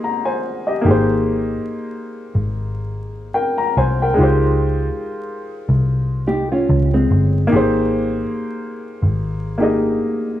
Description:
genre	hip hop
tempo	72 BPM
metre	4/4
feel	swing 60% on 16ths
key	Ab major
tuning	A4 = 440 Hz
part	warm upright piano	accompaniment	0.0-10.4 s	Ab3 to Bb5	-19 LUFS	left 1 dB	low-pass filter, plate reverb
part	vintage muted picked electric bass	bass	0.8-10.0 s	G1 to Db2	-18 LUFS	equal	none
part	nylon-string guitar	second line	6.3-7.5 s	Ab3 to G4	-20 LUFS	equal	low-pass filter, analog delay, plate reverb
room	light reverb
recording	worn, warbling old tape, cassette tape, vinyl crackle, warbly pitch drift, small room ambience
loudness	-16 LUFS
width	side -12 dB against mid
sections	0.8-10.4 A section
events	break 0.0-0.8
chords	0.0 Abmaj9; 4.2 Dbmaj9#11; 7.5 Abmaj9

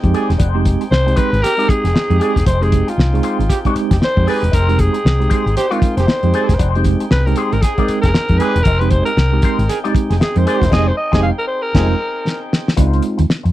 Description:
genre	funk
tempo	116 BPM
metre	4/4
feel	swing 60% on 16ths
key	F minor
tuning	A4 = 439 Hz
part	percussive tonewheel organ	sustained chords	0.0-12.7 s	C4 to G5	-30 LUFS	equal	overdrive, wide subtle chorus
part	tine electric piano	stabs	0.0-13.2 s	Ab3 to Bb4	-20 LUFS	right 4 dB	medium stereo tremolo
part	hollow-body short-scale fingered electric bass	bass	0.0-13.5 s	E1 to F2	-15 LUFS	equal	none
part	cloth-damped thuddy drum kit	drums	0.0-13.5 s	crash cymbal, hi-hat, kick drum, snare drum	-16 LUFS	left 1 dB	none
part	clear trombone	second line	0.1-11.9 s	G4 to Ab4	-23 LUFS	right 7 dB	none
part	electric guitar with an envelope filter	accompaniment	0.1-13.5 s	Ab3 to D5	-26 LUFS	left 9 dB	wah
part	growling alto saxophone	melody	0.9-12.4 s	F4 to F5	-19 LUFS	equal	none
room	little or no reverb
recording	dry, close 1970s-style studio recording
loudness	-13 LUFS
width	side -14 dB against mid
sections	0.0-12.8 A section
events	alto saxophone solo 0.0-12.8; band accent 10.7-12.8; drum fill 12.3-12.8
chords	0.0 Fm9; 12.8 Dbmaj9

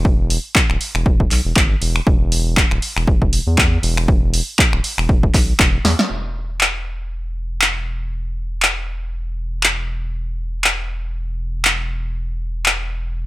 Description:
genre	acid house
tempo	119 BPM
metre	4/4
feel	swing 56% on 16ths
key	unclear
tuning	A4 = 440 Hz
part	round analog bass	bass	0.0-13.3 s	D1 to E2	-22 LUFS	equal	tube saturation, sidechain pumping
part	electronic kick drum	drums	0.1-5.7 s	none	-16 LUFS	equal	none
part	punchy analog drum machine	drums	0.3-12.8 s	finger snaps, handclaps, hi-hat, snare drum	-17 LUFS	equal	none
room	light reverb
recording	none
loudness	-15 LUFS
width	side -17 dB against mid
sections	0.0-6.1 A section; 6.1-13.3 B section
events	drum fill 5.8; band accent 6.0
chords	none

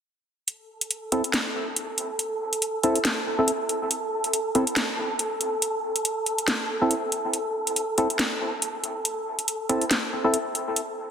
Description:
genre	deep dubstep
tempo	140 BPM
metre	4/4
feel	swing 57% on 16ths, half-time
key	A minor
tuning	A4 = 440 Hz
part	garage drum kit	drums	0.5-10.9 s	hi-hat, snare drum	-25 LUFS	equal	none
part	wind-like tuned noise texture	texture	0.8-11.1 s	A4	-30 LUFS	right 1 dB	built-in reverb
part	percussive organ stab	stabs	1.1-10.4 s	C4 to A4	-27 LUFS	equal	lush chorus, dub echo
room	wet lush hall reverb, RT60 2.1 s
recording	dense, heavily limited modern master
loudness	-23 LUFS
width	side -8 dB against mid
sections	0.5-11.1 A section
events	none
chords	0.5 Am

